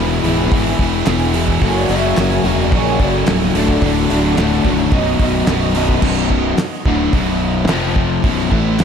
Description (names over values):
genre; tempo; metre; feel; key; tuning
classic rock; 109 BPM; 4/4; straight; unclear; A4 = 440 Hz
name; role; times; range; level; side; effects
fingerpicked twelve-string acoustic guitar; accompaniment; 0.0-6.0 s; F#2 to G#4; -24 LUFS; right 6 dB; analog chorus
tonewheel organ; sustained chords; 0.0-8.8 s; F#3 to G#5; -29 LUFS; equal; none
biting overdriven guitar; riff; 0.0-8.8 s; B1 to A3; -21 LUFS; right 10 dB; slapback echo
crunchy overdriven guitar; riff; 0.0-8.8 s; B1 to F#4; -22 LUFS; left 1 dB; slapback echo
overdriven semi-hollow guitar; riff; 0.0-8.8 s; B1 to A3; -19 LUFS; left 9 dB; none
fuzz fingered electric bass; bass; 0.0-8.8 s; B0 to A#1; -21 LUFS; right 1 dB; overdrive
damped 70s drum kit; drums; 0.2-8.8 s; crash cymbal, hi-hat, kick drum, snare drum; -20 LUFS; right 1 dB; none
group handclap; percussion; 1.1-8.8 s; none; -35 LUFS; left 3 dB; none
electric slide guitar; second line; 1.6-4.6 s; A4 to E5; -25 LUFS; left 3 dB; slapback echo
room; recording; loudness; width
moderate lush hall reverb, RT60 1.7 s, small room reverb; big arena sound; -13 LUFS; side -7 dB against mid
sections
0.0-6.0 A section; 6.0-8.8 B section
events
none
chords
0.0 E; 1.6 F#add9; 3.5 D; 4.9 B; 7.7 F5; 8.2 B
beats
0.52 1.07 | 1.62 2.17 2.72 3.27 | 3.82 4.37 4.92 5.48 | 6.03 6.58 7.13 7.69 | 8.24 8.80